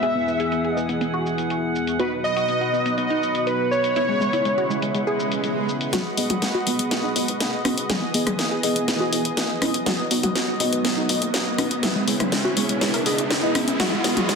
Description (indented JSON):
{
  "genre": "progressive house",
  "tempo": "122 BPM",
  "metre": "4/4",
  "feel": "straight",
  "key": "G# minor",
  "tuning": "A4 = 440 Hz",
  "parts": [
    { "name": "wide unison lead", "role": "melody", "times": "0.0-5.4 s", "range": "B4 to E5", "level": "-24 LUFS", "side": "equal", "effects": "lush chorus, ping-pong delay" },
    { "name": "soft synth bell", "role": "second line", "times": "0.0-5.4 s", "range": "B4 to E5", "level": "-31 LUFS", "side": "right 3 dB", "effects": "none" },
    { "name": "lush unison pad", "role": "sustained chords", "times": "0.0-14.4 s", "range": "E2 to D#5", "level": "-28 LUFS", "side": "equal", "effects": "chorus" },
    { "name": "wide unison pluck", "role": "arpeggios", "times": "0.0-14.4 s", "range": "G#3 to A#4", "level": "-28 LUFS", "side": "right 1 dB", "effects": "dub echo" },
    { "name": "chorused polysynth", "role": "stabs", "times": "0.0-14.1 s", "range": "B3 to E5", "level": "-27 LUFS", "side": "left 1 dB", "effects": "dub echo" },
    { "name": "house drum kit", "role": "drums", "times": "0.0-14.4 s", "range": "hi-hat, shaker, snare drum", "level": "-26 LUFS", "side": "left 1 dB", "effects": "high-pass filter on hats, low-pass filter on hats, high-pass filter on perc, low-pass filter on perc, soft clipping on snare, high-pass filter on snare, low-pass filter on snare, high-pass filter on room, low-pass filter on room" },
    { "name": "drifting glass-harmonics texture", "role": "texture", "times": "0.0-5.9 s", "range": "F#5", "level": "-34 LUFS", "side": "right 4 dB", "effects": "chorus, built-in reverb" },
    { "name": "swell and riser", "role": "sound effects", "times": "5.1-14.4 s", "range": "none", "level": "-30 LUFS", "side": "right 1 dB", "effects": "none" },
    { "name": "plucky analog bass", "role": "bass", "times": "5.9-14.4 s", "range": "E1 to E2", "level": "-39 LUFS", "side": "equal", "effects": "none" },
    { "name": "punchy analog drum machine", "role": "percussion", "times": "5.9-14.3 s", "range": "congas, rim click, toms", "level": "-26 LUFS", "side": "left 2 dB", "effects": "soft clipping on snare" }
  ],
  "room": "moderate digital room reverb, RT60 1.2 s, digital ambience",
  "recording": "dense, heavily limited modern master",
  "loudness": "-20 LUFS",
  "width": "side -5 dB against mid",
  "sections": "0.0-5.9 A section; 5.9-14.4 B section",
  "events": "swell 5.1-5.9; build-up 5.9-14.4; drum fill 5.9-14.4; riser 5.9-14.4; filter sweep on synth pluck 5.9-14.4; filter sweep on analog polysynth 5.9-14.4",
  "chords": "0.0 E; 2.0 B; 4.0 C#m7; 5.9 G#m7; 7.9 Emaj7; 9.9 B; 11.8 C#m7; 13.8 G#m7"
}